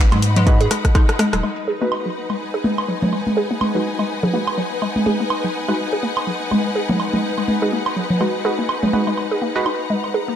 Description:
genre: minimal techno.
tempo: 124 BPM.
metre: 4/4.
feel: swing 57% on 16ths.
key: G# minor.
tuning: A4 = 442 Hz.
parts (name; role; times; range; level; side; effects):
round analog bass; bass; 0.0-1.4 s; D#1 to G#2; -19 LUFS; equal; sidechain pumping.
clear studio string section; texture; 0.0-10.4 s; D#4 to B5; -26 LUFS; left 2 dB; sidechain pumping.
flickering grainy texture; texture; 0.1-10.4 s; B4 to D#5; -30 LUFS; left 2 dB; built-in reverb, sidechain pumping.
hollow square pluck; riff; 0.1-10.3 s; F#3 to G#4; -24 LUFS; equal; chorus, sidechain pumping, ping-pong delay.
garage drum kit; drums; 0.1-1.4 s; hi-hat, rim click; -24 LUFS; left 1 dB; low-pass filter on hats, low-pass filter on snare.
electronic toms, woodblock and congas; percussion; 0.1-10.1 s; none; -22 LUFS; right 1 dB; ping-pong delay.
filtered dub chord stab; stabs; 0.5-9.6 s; G#3 to B4; -25 LUFS; right 1 dB; chorus, ping-pong delay.
electronic kick drum; drums; 0.5-1.1 s; none; -14 LUFS; equal; none.
room: moderate plate reverb, RT60 1.8 s, digital ambience.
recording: none.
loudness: -17 LUFS.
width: side -9 dB against mid.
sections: 0.0-1.4 A section; 1.4-10.4 B section.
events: drop 0.0-1.4; drum fill 0.7-1.4.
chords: 0.0 G#m7.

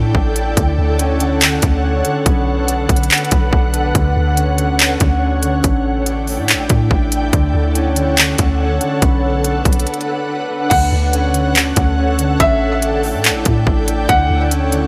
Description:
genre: hip hop, atmospheric cloud-rap.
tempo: 142 BPM.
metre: 4/4.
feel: half-time.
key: D major.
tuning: A4 = 440 Hz.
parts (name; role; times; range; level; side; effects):
ethereal airy pad; sustained chords; 0.0-14.9 s; D3 to G5; -22 LUFS; equal; ensemble chorus, built-in reverb, tremolo, sidechain pumping.
concert harp; arpeggios; 0.0-14.9 s; D3 to D4; -24 LUFS; equal; digital delay.
soft 808-style bass; bass; 0.0-14.9 s; A1 to A2; -20 LUFS; equal; none.
trap drum kit; drums; 0.1-14.8 s; crash cymbal, handclaps, hi-hat, kick drum; -18 LUFS; equal; none.
felt-muted upright piano; melody; 10.7-14.5 s; E5 to F#5; -20 LUFS; equal; digital delay.
room: light reverb.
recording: none.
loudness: -15 LUFS.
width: mono.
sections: 0.0-10.7 A section; 10.7-14.9 B section.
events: break 9.9-10.7.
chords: 0.0 A7sus4; 0.6 Dmaj7; 2.3 Bm7; 4.0 Dmaj7; 5.6 A7sus4; 7.3 Dmaj7; 9.0 Bm7; 10.7 Dmaj7; 12.4 A7sus4; 14.1 Dmaj7.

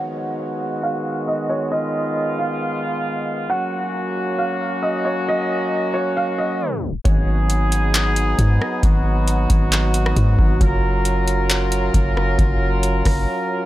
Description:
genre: hip hop, atmospheric cloud-rap.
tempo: 135 BPM.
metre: 4/4.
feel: half-time.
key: G# dorian.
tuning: A4 = 440 Hz.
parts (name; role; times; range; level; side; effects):
felt-muted upright piano; melody; 0.0-7.0 s; C#5 to F#5; -25 LUFS; right 1 dB; low-pass filter, tape echo.
mellow brass ensemble; sustained chords; 0.0-13.7 s; D#3 to A#4; -22 LUFS; equal; sidechain pumping, low-pass filter.
long sustained 808-style bass; bass; 7.1-13.3 s; F#1 to G#2; -18 LUFS; equal; none.
booming analog drum machine; drums; 7.1-13.2 s; handclaps, hi-hat, kick drum, rim click; -19 LUFS; equal; overdrive.
room: light reverb, studio reverb.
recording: tape stop.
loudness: -17 LUFS.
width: side -15 dB against mid.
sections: 0.0-7.1 A section; 7.1-13.7 B section.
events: filter sweep 0.0-7.1; tape stop 6.6-7.1; break 13.3-13.7.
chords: 0.0 G#m7; 3.5 F#; 7.1 G#m7; 10.6 F#maj7.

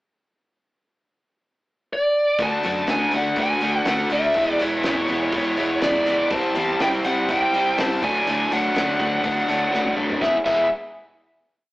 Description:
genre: classic rock.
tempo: 122 BPM.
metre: 4/4.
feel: straight.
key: unclear.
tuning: A4 = 440 Hz.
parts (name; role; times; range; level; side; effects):
bluesy overdriven lead guitar; melody; 1.9-10.7 s; C#5 to A5; -22 LUFS; equal; distortion.
crunchy overdriven guitar; riff; 2.4-10.7 s; C3 to G#4; -22 LUFS; equal; none.
picked electric bass; bass; 2.4-10.7 s; E1 to F#2; -33 LUFS; equal; none.
cloth-damped thuddy drum kit; drums; 2.4-10.6 s; crash cymbal, hi-hat, kick drum, snare drum, toms; -30 LUFS; equal; none.
room: moderate stone room reverb, RT60 1.0 s.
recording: rough rehearsal-room recording, tube saturation, AM radio sound.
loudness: -18 LUFS.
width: side -18 dB against mid.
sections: 0.4-2.4 pickup bar; 2.4-10.2 pre-chorus; 10.2-11.7 final chord.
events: drum fill 9.7-10.2.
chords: 0.4 N.C.; 2.4 D; 4.4 E; 6.3 C; 8.0 D; 10.2 E.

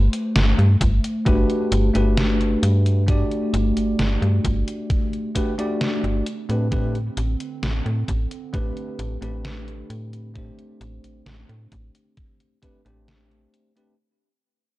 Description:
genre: vaporwave.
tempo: 66 BPM.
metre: 4/4.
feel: straight.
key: unclear.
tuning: A4 = 441 Hz.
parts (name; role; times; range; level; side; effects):
warbly tape-like pad; sustained chords; 0.0-14.0 s; D3 to C4; -29 LUFS; left 1 dB; chorus, built-in reverb.
slap-like FM bass; bass; 0.0-13.5 s; G1 to A2; -20 LUFS; equal; none.
detuned 8-bit digital drum machine; drums; 0.1-13.9 s; hi-hat, snare drum; -26 LUFS; equal; vintage 12-bit sampler grit.
electronic kick drum; drums; 0.8-12.8 s; none; -24 LUFS; equal; vintage 12-bit sampler grit.
bell-like tine electric piano; accompaniment; 1.3-13.9 s; A3 to D5; -26 LUFS; equal; lush chorus, vintage 12-bit sampler grit, analog delay.
room: digital ambience.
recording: dry, gritty hardware recording, cassette tape.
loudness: -19 LUFS.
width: side -18 dB against mid.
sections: 0.0-14.0 A section.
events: fade-out 0.0-14.0.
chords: 0.0 Gmaj9; 6.3 Am11.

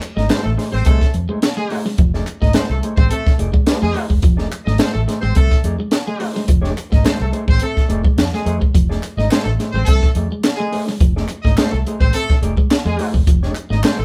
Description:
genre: funk.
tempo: 106 BPM.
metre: 4/4.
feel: straight.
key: unclear.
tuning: A4 = 439 Hz.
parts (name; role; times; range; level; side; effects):
hollow-body jazz guitar; accompaniment; 0.0-14.0 s; A3 to D5; -28 LUFS; equal; none.
clean electric guitar; riff; 0.0-13.9 s; F3 to C4; -28 LUFS; equal; none.
compact cocktail drum kit; drums; 0.0-14.0 s; hi-hat, kick drum, snare drum; -18 LUFS; equal; none.
group handclap; percussion; 0.0-14.0 s; none; -34 LUFS; equal; none.
warm horn section; second line; 0.2-14.0 s; G#3 to Eb5; -26 LUFS; equal; none.
vintage muted fingered electric bass; bass; 0.2-14.0 s; E1 to F2; -23 LUFS; equal; none.
room: light reverb.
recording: band playing live in one room.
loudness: -17 LUFS.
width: mono.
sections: 0.0-14.0 A section.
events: none.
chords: 0.0 F7#9.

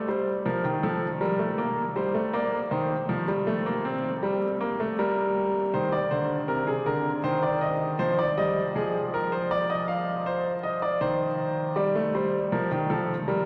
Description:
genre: classical, baroque-style two-part invention for grand piano.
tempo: 80 BPM.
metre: 4/4.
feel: straight.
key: C minor.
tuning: A4 = 440 Hz.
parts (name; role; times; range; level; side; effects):
clear baby grand piano; solo; 0.0-13.5 s; C3 to F5; -27 LUFS; equal; none.
room: wet cathedral reverb, RT60 5.8 s.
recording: vinyl crackle.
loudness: -27 LUFS.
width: mono.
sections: 0.0-13.5 A section.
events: none.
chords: 0.0 Gm; 2.7 Cm/Eb; 4.2 Gm; 5.7 Cm; 7.2 Cm/Eb; 8.7 Fm; 10.3 Cm; 11.8 Gm.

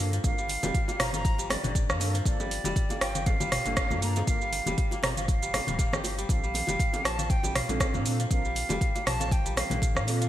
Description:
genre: afro house.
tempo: 119 BPM.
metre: 4/4.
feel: swing 55% on 16ths.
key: G minor.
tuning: A4 = 440 Hz.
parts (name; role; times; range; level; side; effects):
kora; arpeggios; 0.0-10.3 s; D3 to G4; -36 LUFS; left 1 dB; sidechain pumping, ping-pong delay.
mellow synth brass; stabs; 0.0-10.2 s; Bb3 to Bb4; -37 LUFS; right 3 dB; chorus, sidechain pumping, ping-pong delay.
warm sub bass; bass; 0.0-10.3 s; D1 to Bb2; -33 LUFS; equal; sidechain pumping.
afro-pop drum kit; drums; 0.1-10.3 s; hi-hat, rim click, shaker, toms; -31 LUFS; right 1 dB; studio reverb, gated reverb.
congas; percussion; 0.1-10.3 s; none; -38 LUFS; left 5 dB; none.
bright silver concert flute; melody; 0.2-10.0 s; D5 to Bb5; -33 LUFS; right 1 dB; ping-pong delay.
electronic kick drum; drums; 0.2-9.9 s; none; -27 LUFS; equal; studio reverb.
bongos; percussion; 0.2-10.2 s; none; -40 LUFS; right 2 dB; none.
room: light reverb, studio ambience.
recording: bright 1980s-style digital production.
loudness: -25 LUFS.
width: side -13 dB against mid.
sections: 0.0-10.3 A section.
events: none.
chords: 0.0 Gm9; 6.3 Bbmaj7.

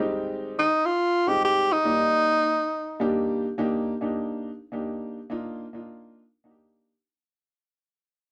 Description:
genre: soul.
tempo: 139 BPM.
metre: 4/4.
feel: swing 64% on 8ths.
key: Eb major.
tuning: A4 = 440 Hz.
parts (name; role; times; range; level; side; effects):
warm upright piano; accompaniment; 0.0-6.9 s; G3 to D5; -30 LUFS; equal; none.
breathy tenor saxophone; melody; 0.6-3.2 s; Eb4 to G4; -24 LUFS; equal; none.
room: moderate club reverb, RT60 0.5 s.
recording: dark, warm production.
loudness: -25 LUFS.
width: mono.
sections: 0.0-3.6 A section; 3.6-7.0 B section.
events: fade-out 3.6-7.0.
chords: 0.0 Abmaj7; 1.9 Ebmaj7.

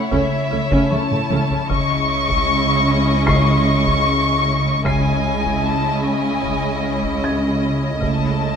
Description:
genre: cinematic, suspense film score.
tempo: 76 BPM.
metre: 4/4.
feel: straight.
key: C# harmonic minor.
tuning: A4 = 440 Hz.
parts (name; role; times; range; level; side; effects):
muted chamber violin section; melody; 0.0-8.6 s; E5 to C#6; -21 LUFS; left 3 dB; none.
muted studio violin section; second line; 0.0-8.6 s; E4 to D#5; -25 LUFS; left 1 dB; none.
felt-muted upright piano; texture; 0.0-8.6 s; C#6 to B#6; -30 LUFS; equal; none.
muted chamber viola section; accompaniment; 0.1-8.6 s; G#3 to C#4; -24 LUFS; right 2 dB; none.
marimba with medium hard mallets; riff; 0.1-8.6 s; C#3 to C#4; -23 LUFS; left 4 dB; none.
muted chamber cello section; bass; 0.1-8.6 s; C#3; -25 LUFS; right 4 dB; none.
muted chamber double bass section; bass; 0.1-8.6 s; C#2; -24 LUFS; right 3 dB; none.
taiko ensemble; drums; 0.1-8.6 s; none; -26 LUFS; right 1 dB; none.
room: moderate scoring stage reverb, RT60 1.8 s.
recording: none.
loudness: -16 LUFS.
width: side -7 dB against mid.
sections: 0.0-8.6 A section.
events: drum fill 0.9-1.7.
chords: 0.0 A/C#; 1.7 C#madd9; 8.0 A/C#.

